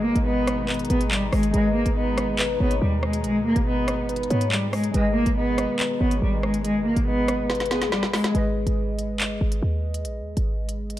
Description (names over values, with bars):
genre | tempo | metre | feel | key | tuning
hip hop, drill | 141 BPM | 4/4 | half-time | G# minor | A4 = 441 Hz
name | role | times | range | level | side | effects
warm cello | melody | 0.0-8.3 s | G3 to B3 | -24 LUFS | equal | low-pass filter
warbly lo-fi synth keys | accompaniment | 0.0-11.0 s | G#3 to D#5 | -32 LUFS | right 2 dB | chorus, low-pass filter
warm chamber string section | sustained chords | 0.0-8.3 s | B2 to D#4 | -33 LUFS | left 1 dB | none
short 808-style bass | bass | 0.0-11.0 s | G#1 to G#2 | -25 LUFS | equal | none
drill drum kit | drums | 0.2-11.0 s | handclaps, hi-hat, rim click, snare drum | -28 LUFS | equal | none
soft octave-layered synth lead | second line | 0.3-7.9 s | G#4 to D#5 | -32 LUFS | left 3 dB | chorus, phaser, ping-pong delay
room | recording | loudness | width
digital ambience | dark, warm production | -21 LUFS | side -13 dB against mid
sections
0.0-8.3 A section; 8.3-11.0 B section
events
drum fill 7.5-8.3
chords
0.0 G#m